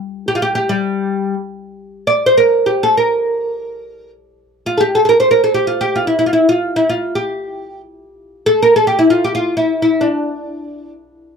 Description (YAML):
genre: Turkish makam ensemble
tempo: free time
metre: none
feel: none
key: G makam huseyni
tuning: A4 = 440 Hz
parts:
  - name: oud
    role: solo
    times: 0.3-10.9 s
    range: G3 to D5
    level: -13 LUFS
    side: equal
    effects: none
room: little or no reverb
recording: dry, close 1970s-style studio recording, faint mains hum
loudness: -13 LUFS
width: side -6 dB against mid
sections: 0.0-1.8 A section; 1.8-11.4 A section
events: none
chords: none